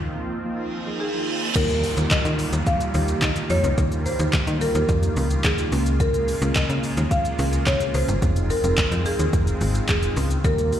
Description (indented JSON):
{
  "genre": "dance-pop",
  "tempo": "108 BPM",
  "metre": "4/4",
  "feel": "straight",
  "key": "unclear",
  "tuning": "A4 = 436 Hz",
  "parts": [
    { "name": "marimba with medium hard mallets", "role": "melody", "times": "0.0-10.8 s", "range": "Ab4 to F5", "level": "-26 LUFS", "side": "equal", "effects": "ping-pong delay, slapback echo" },
    { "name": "mellow synth brass", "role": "accompaniment", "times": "0.0-10.8 s", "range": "F3 to Ab4", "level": "-29 LUFS", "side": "right 2 dB", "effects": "chorus, sidechain pumping, slapback echo" },
    { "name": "filtered supersaw swell", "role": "sustained chords", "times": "0.0-10.8 s", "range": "Db3 to F4", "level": "-33 LUFS", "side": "right 1 dB", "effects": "sidechain pumping" },
    { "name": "slap-like FM bass", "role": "bass", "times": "0.0-10.7 s", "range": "F1 to Eb3", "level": "-23 LUFS", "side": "equal", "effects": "sidechain pumping" },
    { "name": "reverse cymbal and downlifter", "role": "sound effects", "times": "0.7-6.0 s", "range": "none", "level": "-30 LUFS", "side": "right 2 dB", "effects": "none" },
    { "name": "smooth R&B drum kit", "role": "drums", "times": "1.6-10.8 s", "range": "crash cymbal, handclaps, hi-hat, kick drum, shaker, snare drum", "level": "-24 LUFS", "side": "equal", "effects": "overdrive" },
    { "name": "group handclap", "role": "percussion", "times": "2.1-10.0 s", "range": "none", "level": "barely audible", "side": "none", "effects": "none" }
  ],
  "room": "little or no reverb",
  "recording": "live gig heard through the venue's PA, recital hall reverb",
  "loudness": "-19 LUFS",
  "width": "side -10 dB against mid",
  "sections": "0.0-1.6 A section; 1.6-10.8 B section",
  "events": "reverse cymbal 0.7-1.6",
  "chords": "0.0 Ebsus2; 1.6 Ebadd9; 5.7 Bbm7/Db; 8.2 Fm7"
}